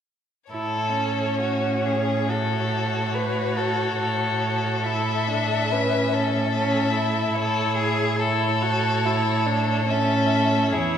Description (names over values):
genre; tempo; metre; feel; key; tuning
classical, slow romantic movement for string quartet; 71 BPM; 4/4; rubato; A major; A4 = 440 Hz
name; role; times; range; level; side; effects
warm violin; melody; 0.5-11.0 s; C#5 to E5; -29 LUFS; left 8 dB; none
rich violin; second line; 0.5-11.0 s; F#4 to B4; -25 LUFS; left 3 dB; none
rich viola; accompaniment; 0.5-11.0 s; C#4 to F#4; -26 LUFS; right 2 dB; none
rich cello; bass; 0.5-11.0 s; E2 to A2; -26 LUFS; right 3 dB; none
room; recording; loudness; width
wet recital hall reverb, RT60 1.4 s; recorded in a church or concert hall; -20 LUFS; side -8 dB against mid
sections
0.5-11.0 A section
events
none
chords
0.5 A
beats
| 0.52 1.41 2.29 3.14 | 3.99 4.85 5.71 6.54 | 7.37 8.20 9.05 9.90 | 10.74